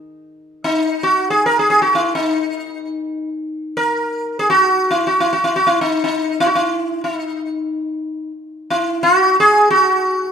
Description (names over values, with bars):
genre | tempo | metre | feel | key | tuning
indian classical, Hindustani | free time | none | none | Eb raga bhairavi | A4 = 440 Hz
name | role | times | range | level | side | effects
sitar | solo | 0.6-10.3 s | Eb4 to Bb4 | -14 LUFS | equal | none
room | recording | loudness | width
moderate recital hall reverb, RT60 1.5 s | minimal, uncompressed stereo recording | -14 LUFS | side -7 dB against mid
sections
0.3-10.3 A section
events
none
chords
none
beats
free time